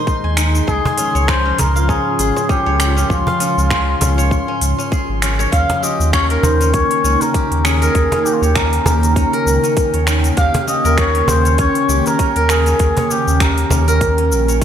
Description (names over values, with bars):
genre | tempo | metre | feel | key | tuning
organic downtempo | 99 BPM | 4/4 | swing 57% on 16ths | Eb mixolydian | A4 = 440 Hz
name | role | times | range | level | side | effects
trumpet with cup mute | melody | 0.0-14.6 s | F4 to F5 | -19 LUFS | left 1 dB | ping-pong delay
ethereal airy pad | sustained chords | 0.0-14.6 s | Ab2 to G5 | -22 LUFS | right 1 dB | ensemble chorus, built-in reverb, sidechain pumping
steel-string zither | arpeggios | 0.0-14.6 s | Db4 to Ab5 | -20 LUFS | equal | ping-pong delay
drifting glass-harmonics texture | texture | 0.0-5.5 s | C6 | -31 LUFS | right 4 dB | chorus, built-in reverb
electronic kick drum | drums | 0.1-14.6 s | none | -20 LUFS | equal | overdrive
organic electronic drum kit | drums | 0.1-14.6 s | finger snaps, hi-hat, shaker | -22 LUFS | equal | overdrive, gated reverb
warm sub bass | bass | 0.2-14.6 s | Ab1 to Eb2 | -16 LUFS | equal | sidechain pumping
cajon | percussion | 0.9-13.8 s | none | -23 LUFS | right 1 dB | none
room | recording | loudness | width
moderate lush hall reverb, RT60 1.7 s, digital ambience | bright 1980s-style digital production | -13 LUFS | side -9 dB against mid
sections
0.0-5.5 A section; 5.5-14.6 B section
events
none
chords
0.0 Ebsus4; 0.7 Db; 5.5 Eb7